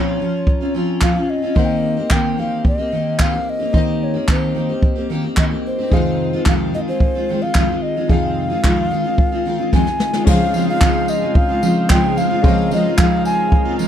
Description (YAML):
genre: acoustic pop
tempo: 110 BPM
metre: 4/4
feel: straight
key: unclear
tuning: A4 = 440 Hz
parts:
  - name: mellow alto ocarina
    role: melody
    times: 0.0-13.8 s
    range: C5 to Ab5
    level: -22 LUFS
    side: equal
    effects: none
  - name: fingerpicked steel-string acoustic guitar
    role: accompaniment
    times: 0.0-13.9 s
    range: F2 to G4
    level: -19 LUFS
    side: equal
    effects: double-tracked left and right
  - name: warm concert grand piano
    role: accompaniment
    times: 0.0-13.9 s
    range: Db4 to C6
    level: -29 LUFS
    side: left 6 dB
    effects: none
  - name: jazz brush drum kit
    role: drums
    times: 0.5-13.9 s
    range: crash cymbal, handclaps, kick drum, snare drum, tambourine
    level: -16 LUFS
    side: equal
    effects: none
  - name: tonewheel organ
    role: sustained chords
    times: 10.3-13.9 s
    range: Db3 to F5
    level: -27 LUFS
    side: right 2 dB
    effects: overdrive, wide subtle chorus
room: little or no reverb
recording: dry, close 1970s-style studio recording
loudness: -15 LUFS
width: side -9 dB against mid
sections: 0.0-10.3 A section; 10.3-13.9 B section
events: drum fill 9.7-10.3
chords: 0.0 Bbmadd9; 1.6 Eb6; 5.9 Fm7; 10.3 Dbmaj7